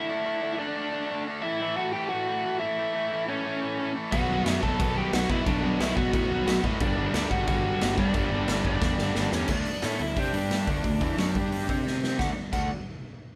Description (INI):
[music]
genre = punk rock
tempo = 179 BPM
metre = 4/4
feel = straight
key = D major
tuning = A4 = 440 Hz
[part]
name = biting lead guitar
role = melody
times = 0.0-12.7 s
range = C#4 to A5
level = -32 LUFS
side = equal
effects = overdrive
[part]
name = tight distorted guitar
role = riff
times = 0.0-12.7 s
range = G2 to C5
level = -35 LUFS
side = equal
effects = distortion
[part]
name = high-gain distorted guitar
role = riff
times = 4.1-10.0 s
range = G2 to B3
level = -40 LUFS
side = equal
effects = none
[part]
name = overdriven semi-hollow guitar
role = riff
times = 4.1-12.7 s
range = G2 to C5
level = -36 LUFS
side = equal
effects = none
[part]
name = fuzz picked electric bass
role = bass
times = 4.1-12.7 s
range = G1 to C3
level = -33 LUFS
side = equal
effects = overdrive
[part]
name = raw garage drum kit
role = drums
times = 4.1-12.6 s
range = crash cymbal, hi-hat, kick drum, snare drum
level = -31 LUFS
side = equal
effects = none
[sound]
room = light reverb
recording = band playing live in one room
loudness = -27 LUFS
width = mono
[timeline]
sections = 0.0-9.5 A section; 9.5-12.2 B section; 12.2-13.4 C section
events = drum fill 8.8-9.5, 11.8-12.2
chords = 0.0 D5; 1.4 A; 4.1 Bm; 6.8 G5; 9.5 D5; 10.3 G5; 10.7 D; 11.3 G5; 11.7 C5; 12.2 D5